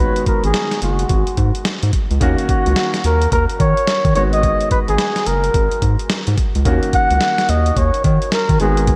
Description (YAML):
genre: R&B, new jack swing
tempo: 108 BPM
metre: 4/4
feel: swing 62% on 16ths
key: Eb minor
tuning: A4 = 440 Hz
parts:
  - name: trumpet with bucket mute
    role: melody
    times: 0.0-9.0 s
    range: Gb4 to Gb5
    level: -21 LUFS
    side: equal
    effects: slapback echo
  - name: clear concert grand piano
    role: accompaniment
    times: 0.0-9.0 s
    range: Eb3 to Gb4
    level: -26 LUFS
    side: equal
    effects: slapback echo
  - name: round analog bass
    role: bass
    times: 0.0-9.0 s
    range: Gb1 to Eb3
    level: -19 LUFS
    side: equal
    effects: none
  - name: boom bap sampler-style drum kit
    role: drums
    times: 0.2-9.0 s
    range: hi-hat, kick drum, snare drum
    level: -21 LUFS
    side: equal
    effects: none
room: moderate lush hall reverb, RT60 2.5 s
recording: big arena sound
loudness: -16 LUFS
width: mono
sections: 0.0-9.0 A section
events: none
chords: 0.0 Abm7; 2.2 Ebm7; 4.2 Abm7; 6.7 Ebm7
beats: 0.54 1.10 1.65 | 2.21 2.77 3.32 3.88 | 4.43 4.99 5.54 6.10 | 6.65 7.21 7.76 8.32 | 8.88